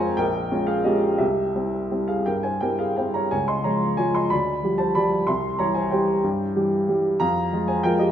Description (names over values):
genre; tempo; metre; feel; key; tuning
classical, piano waltz; 163-196 BPM; 3/4; rubato; unclear; A4 = 441 Hz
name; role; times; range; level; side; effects
warm upright piano; solo; 0.0-8.1 s; Bb1 to C6; -20 LUFS; equal; none
room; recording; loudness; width
wet recital hall reverb, RT60 1.6 s; minimal, uncompressed stereo recording; -20 LUFS; side -10 dB against mid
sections
0.0-8.1 A section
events
none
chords
0.2 Bbm7; 1.2 C; 3.3 Db; 4.3 G7/D; 5.3 C; 7.2 Fm